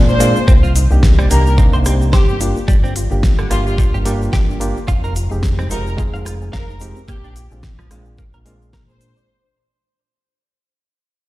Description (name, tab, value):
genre	nu-disco, nu disco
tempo	109 BPM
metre	4/4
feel	swing 56% on 16ths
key	unclear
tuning	A4 = 440 Hz
part	bright reed electric piano	accompaniment	0.0-9.3 s	Ab3 to Bb4	-24 LUFS	right 1 dB	sidechain pumping, ping-pong delay
part	soft round pluck	arpeggios	0.0-9.2 s	Bb3 to D5	-29 LUFS	left 4 dB	chorus, sidechain pumping, ping-pong delay
part	fingered electric bass with an envelope filter	bass	0.0-9.1 s	F1 to Bb2	-16 LUFS	equal	none
part	dark symphonic violin section	melody	0.1-9.3 s	F4 to C5	-24 LUFS	equal	ping-pong delay
part	tube shaker	percussion	0.1-9.3 s	none	-35 LUFS	left 2 dB	none
part	direct-recorded clean electric guitar	riff	0.2-8.8 s	D3 to F5	-27 LUFS	right 2 dB	analog chorus, ping-pong delay
part	pop drum kit	drums	0.2-9.1 s	hi-hat, rim click, snare drum	-24 LUFS	equal	none
part	electronic kick drum	drums	0.5-8.9 s	none	-13 LUFS	equal	none
room	digital ambience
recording	played on a big sound system in a bare room, large studio reverb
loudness	-12 LUFS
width	side -17 dB against mid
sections	0.0-9.3 A section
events	drop 0.0-9.3; fade-out 0.5-9.3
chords	0.5 Cm7; 2.4 Gm7; 4.9 Fm7; 7.1 Bb7